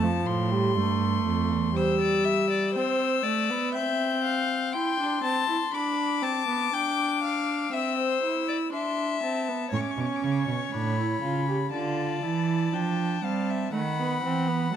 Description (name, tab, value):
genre	classical, baroque-style fugue for string quartet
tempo	60 BPM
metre	4/4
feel	straight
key	unclear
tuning	A4 = 440 Hz
part	rich violin	melody	0.0-14.8 s	A5 to G6	-30 LUFS	left 10 dB	none
part	warm viola	accompaniment	0.0-14.8 s	F3 to G4	-28 LUFS	right 2 dB	none
part	rich cello	bass	0.0-1.8, 9.7-14.8 s	E2 to G3	-28 LUFS	right 4 dB	none
part	rich violin	second line	1.8-14.8 s	C5 to B5	-30 LUFS	left 4 dB	none
room	moderate scoring stage reverb, RT60 1.7 s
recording	close, detailed microphones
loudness	-24 LUFS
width	side -9 dB against mid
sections	0.0-9.7 A section; 9.7-14.8 B section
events	none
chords	0.0 F; 1.8 C/G; 3.7 C; 5.7 Bdim; 7.7 C; 9.7 A; 11.7 Dm; 13.7 B/D#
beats	0.77 | 1.76 2.75 3.75 4.74 | 5.73 6.73 7.72 8.72 | 9.72 10.73 11.73 12.73 | 13.73 14.73